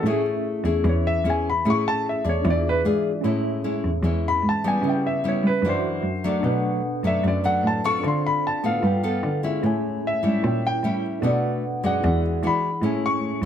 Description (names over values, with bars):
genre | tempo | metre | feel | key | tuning
bossa nova | 150 BPM | 4/4 | straight | A major | A4 = 440 Hz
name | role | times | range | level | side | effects
warm concert grand piano | melody | 0.0-13.4 s | G#4 to C#6 | -25 LUFS | left 1 dB | plate reverb
nylon-string guitar | accompaniment | 0.0-13.5 s | F#2 to A4 | -26 LUFS | left 3 dB | none
tine electric piano | accompaniment | 0.0-13.5 s | A3 to G#5 | -29 LUFS | right 3 dB | medium stereo tremolo
warm cello | bass | 0.0-13.5 s | E2 to G3 | -25 LUFS | right 1 dB | none
room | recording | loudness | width
moderate booth ambience, RT60 0.2 s | none | -20 LUFS | side -9 dB against mid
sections
0.0-3.2 A section; 3.2-13.5 A section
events
grand piano solo 0.0-13.5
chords
0.0 Amaj7; 2.4 E7b9; 3.2 Amaj7; 4.8 C#m7b5; 5.6 F#7alt; 6.4 Bm7; 8.0 Dm7; 8.8 G9; 9.6 Amaj7; 10.4 A#dim7; 11.2 Bm7; 12.0 E9; 12.8 Amaj7